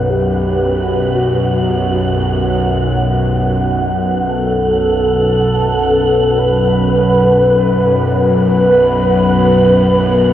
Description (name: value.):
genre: dark ambient drone.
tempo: free time.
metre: none.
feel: none.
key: unclear.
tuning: A4 = 441 Hz.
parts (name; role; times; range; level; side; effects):
mellow horn-like synth lead; melody; 0.0-10.3 s; F#4 to B4; -15 LUFS; equal; wide subtle chorus, tape echo.
sweeping resonant pad; sustained chords; 0.0-10.3 s; B2 to B4; -16 LUFS; equal; chorus.
bowed-like drone; drone; 0.0-10.3 s; B1 to F#2; -17 LUFS; equal; built-in reverb.
wind-like tuned noise texture; texture; 0.0-10.3 s; F#5; -23 LUFS; right 2 dB; built-in reverb.
room: wet huge ambient reverb, RT60 8.1 s.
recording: worn, warbling old tape, cassette tape, warbly pitch drift.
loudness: -11 LUFS.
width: side -11 dB against mid.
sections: 0.0-10.3 A section.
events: none.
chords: 0.0 B5.